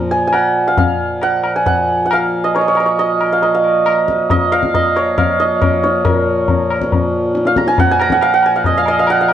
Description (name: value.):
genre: indian classical, Hindustani.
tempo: 137 BPM.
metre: 4/4.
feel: straight.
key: Bb raga bhairavi.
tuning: A4 = 442 Hz.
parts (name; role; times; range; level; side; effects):
santur; melody; 0.0-9.3 s; Bb4 to Bb5; -14 LUFS; right 2 dB; none.
hand-pumped harmonium; drone; 0.0-9.3 s; Bb2 to F3; -20 LUFS; equal; none.
tabla; percussion; 0.3-9.3 s; none; -19 LUFS; left 4 dB; none.
room: moderate studio reverb, RT60 0.6 s.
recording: worn, warbling old tape, cassette tape, warbly pitch drift, nothing above 10.5 kHz, faint mains hum.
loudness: -12 LUFS.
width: side -10 dB against mid.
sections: 0.0-6.1 A section; 6.1-9.3 B section.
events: speeding up 0.0-9.3.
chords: none.